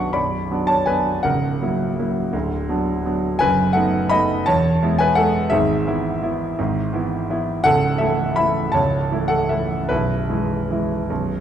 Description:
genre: classical, piano waltz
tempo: 146-178 BPM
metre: 3/4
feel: rubato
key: E major from 3.4 s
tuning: A4 = 441 Hz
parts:
  - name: clear grand piano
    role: solo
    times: 0.0-11.4 s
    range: B0 to C#6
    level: -18 LUFS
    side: equal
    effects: none
room: wet recital hall reverb, RT60 1.4 s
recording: dark, warm production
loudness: -18 LUFS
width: side -9 dB against mid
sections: 0.0-11.4 A section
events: none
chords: 0.0 Bm; 1.2 F#7/C#; 2.3 Bm/D; 3.4 B7/F#; 4.5 E; 5.5 E/G#; 7.7 A/C#; 9.9 E/B

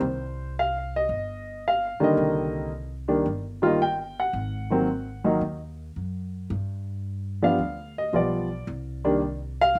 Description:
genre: jazz piano trio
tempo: 111 BPM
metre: 4/4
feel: swing 69% on 8ths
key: C minor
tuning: A4 = 439 Hz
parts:
  - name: warm baby grand piano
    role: melody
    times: 0.0-9.8 s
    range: D3 to G5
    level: -26 LUFS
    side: equal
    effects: slapback echo
  - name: upright bass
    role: bass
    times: 0.0-9.8 s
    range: G1 to G2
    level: -36 LUFS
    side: equal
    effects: none
room: little or no reverb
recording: recorded outdoors, with no room sound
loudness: -27 LUFS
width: mono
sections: 0.0-9.8 A section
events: none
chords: 0.0 Cm7; 4.3 Ab7(no3); 6.5 G7; 8.7 N.C.

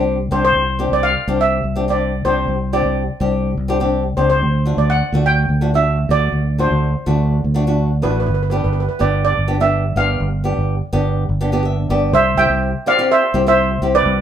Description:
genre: calypso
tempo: 124 BPM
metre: 4/4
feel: straight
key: C major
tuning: A4 = 440 Hz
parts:
  - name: flamenco guitar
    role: accompaniment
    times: 0.0-14.1 s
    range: A3 to E5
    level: -21 LUFS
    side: left 2 dB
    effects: none
  - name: fingered electric bass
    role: bass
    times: 0.0-14.2 s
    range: G1 to D2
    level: -18 LUFS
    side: equal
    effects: none
  - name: steel pan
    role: melody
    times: 0.3-14.2 s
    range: B4 to G5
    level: -17 LUFS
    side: right 2 dB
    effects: none
room: moderate studio ambience, RT60 0.5 s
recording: band playing live in one room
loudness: -14 LUFS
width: side -9 dB against mid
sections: 0.0-12.1 A section; 12.1-14.2 B section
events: nylon-string guitar fill 11.4-12.1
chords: 0.0 Csus2; 4.4 D7; 8.3 G; 12.1 C

